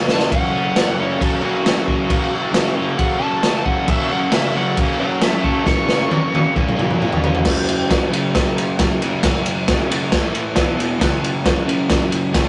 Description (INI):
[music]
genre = garage rock duo or trio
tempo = 135 BPM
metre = 4/4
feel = straight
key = F# major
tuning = A4 = 440 Hz
[part]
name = crunchy overdriven guitar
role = riff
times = 0.0-12.5 s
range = E2 to C#4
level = -23 LUFS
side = equal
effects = none
[part]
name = fuzz lead guitar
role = melody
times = 0.1-6.5 s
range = F#4 to C#6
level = -26 LUFS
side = equal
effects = distortion
[part]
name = crunchy breakbeat drum kit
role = drums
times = 0.1-12.4 s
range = crash cymbal, kick drum, ride cymbal, snare drum, toms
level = -20 LUFS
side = equal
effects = none
[sound]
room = light reverb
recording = rough rehearsal-room recording, nothing above 10.8 kHz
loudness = -18 LUFS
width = mono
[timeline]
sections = 0.0-7.5 A section; 7.5-12.5 B section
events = drum fill 0.0-0.3, 5.7-7.5; lead electric guitar solo 0.0-7.5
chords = 0.0 F#; 7.5 F#5; 10.1 A5; 10.6 E5; 11.0 F#5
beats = | 0.31 0.76 1.21 1.65 | 2.10 2.55 2.99 3.44 | 3.89 4.33 4.78 5.22 | 5.67 6.12 6.56 7.01 | 7.45 7.90 8.34 8.79 | 9.23 9.68 10.12 10.56 | 11.01 11.45 11.89 12.34